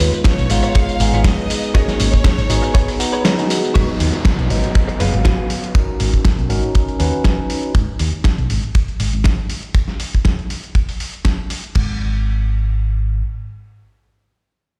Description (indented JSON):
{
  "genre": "nu-disco, nu disco",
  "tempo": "120 BPM",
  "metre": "4/4",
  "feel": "swing 54% on 16ths",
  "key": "G# dorian",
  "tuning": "A4 = 441 Hz",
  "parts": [
    { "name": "clear chamber violin section", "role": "melody", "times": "0.0-3.2 s", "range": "B4 to E#5", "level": "-28 LUFS", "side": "equal", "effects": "analog delay" },
    { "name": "tine electric piano", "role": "accompaniment", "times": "0.0-7.7 s", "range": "F#3 to A#5", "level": "-24 LUFS", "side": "equal", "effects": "phaser, analog delay" },
    { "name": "direct-recorded clean electric guitar", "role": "riff", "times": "0.0-5.5 s", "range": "E#4 to D#5", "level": "-29 LUFS", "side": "equal", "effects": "ensemble chorus, analog delay" },
    { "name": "picked electric bass", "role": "bass", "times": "0.0-13.2 s", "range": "F#1 to D#2", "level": "-20 LUFS", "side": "equal", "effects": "none" },
    { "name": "dusty soul sampler-style drum kit", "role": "drums", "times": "0.0-11.9 s", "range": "crash cymbal, hi-hat, ride cymbal, snare drum, tambourine", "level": "-26 LUFS", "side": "equal", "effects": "overdrive" },
    { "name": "kick drum", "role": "drums", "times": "0.3-11.9 s", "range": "none", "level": "-16 LUFS", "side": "equal", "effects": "none" },
    { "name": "downlifter", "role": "sound effects", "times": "3.8-7.8 s", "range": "none", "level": "-32 LUFS", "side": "equal", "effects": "none" }
  ],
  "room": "light reverb, small room ambience",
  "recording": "played on a big sound system in a bare room, stone room reverb",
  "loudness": "-17 LUFS",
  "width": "mono",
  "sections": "0.0-3.8 A section; 3.8-11.8 B section; 11.8-14.8 C section",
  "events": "drop 0.0-3.8; band accent 3.2",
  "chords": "0.0 C#7/G#; 1.8 F#69/G#; 2.8 C#7sus4; 3.8 G#m7; 5.8 Bmaj7/G#; 7.8 N.C."
}